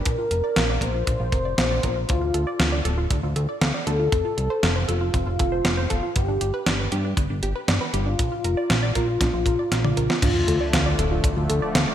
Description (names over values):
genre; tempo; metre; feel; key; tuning
synthwave; 118 BPM; 4/4; straight; D minor; A4 = 439 Hz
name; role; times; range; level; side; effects
warm velvety synth lead; melody; 0.0-10.9 s; F4 to C5; -27 LUFS; left 1 dB; chorus, ping-pong delay
fat analog bass; bass; 0.0-11.9 s; D1 to G2; -25 LUFS; equal; sidechain pumping
wide unison pluck; arpeggios; 0.1-11.9 s; B3 to F5; -30 LUFS; right 1 dB; ping-pong delay
clean 12-bit digital drum machine; drums; 0.1-11.9 s; crash cymbal, hi-hat, snare drum, toms; -25 LUFS; equal; gated reverb
kick drum; drums; 0.1-11.3 s; none; -26 LUFS; equal; none
brassy analog pad; sustained chords; 10.2-11.9 s; D3 to A3; -28 LUFS; left 1 dB; chorus, tremolo, sidechain pumping
sub drop; sound effects; 10.2-11.9 s; none; -30 LUFS; equal; none
room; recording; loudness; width
moderate lush hall reverb, RT60 1.9 s, digital ambience; bright 1980s-style digital production; -20 LUFS; side -10 dB against mid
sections
0.0-10.2 A section; 10.2-11.9 B section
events
drum fill 9.7-10.2; impact 10.2-11.9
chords
0.1 Bb; 2.1 Dm; 4.1 F; 6.2 G; 8.2 Bb; 10.2 Dm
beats
| 0.06 0.56 1.07 1.58 | 2.09 2.60 3.11 3.62 | 4.12 4.63 5.14 5.65 | 6.16 6.67 7.17 7.68 | 8.19 8.70 9.21 9.72 | 10.22 10.73 11.24 11.75